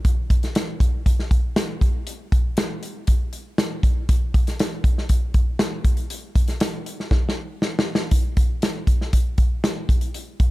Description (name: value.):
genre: soul.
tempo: 119 BPM.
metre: 4/4.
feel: straight.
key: none.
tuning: none.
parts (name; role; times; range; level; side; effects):
natural country drum kit; drums; 0.0-10.5 s; hi-hat, kick drum, snare drum; -19 LUFS; equal; none.
room: little or no reverb.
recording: dark, warm production.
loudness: -19 LUFS.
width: side -19 dB against mid.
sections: 0.0-8.1 A section; 8.1-10.5 B section.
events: drum fill 7.1-8.1.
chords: none.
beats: | 0.05 0.56 1.06 1.57 | 2.07 2.58 3.08 3.58 | 4.09 4.59 5.10 5.60 | 6.11 6.61 7.12 7.62 | 8.12 8.63 9.14 9.64 | 10.15.